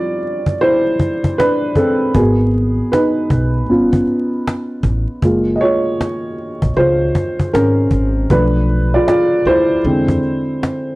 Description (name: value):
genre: lo-fi hip hop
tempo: 78 BPM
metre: 4/4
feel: swing 64% on 16ths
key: unclear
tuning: A4 = 441 Hz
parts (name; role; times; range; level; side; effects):
- dark upright piano; accompaniment; 0.0-11.0 s; D3 to D#5; -14 LUFS; equal; cassette tape, low-pass filter
- cajon; drums; 0.2-10.9 s; none; -18 LUFS; equal; vintage 12-bit sampler grit
- upright bass; bass; 2.1-10.2 s; F#1 to E2; -18 LUFS; equal; tube saturation
room: light reverb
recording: dry, gritty hardware recording, vinyl crackle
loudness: -13 LUFS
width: side -20 dB against mid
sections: 0.0-11.0 A section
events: break 0.0-2.1; upright piano solo 0.0-11.0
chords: 0.0 Dm11; 2.1 G#m7; 3.7 G7#11; 5.2 F#maj9 (rootless); 8.3 Bm7b5; 9.8 Eaug7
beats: 0.61 1.38 | 2.15 2.92 3.69 4.46 | 5.22 5.99 6.76 7.53 | 8.30 9.07 9.84 10.61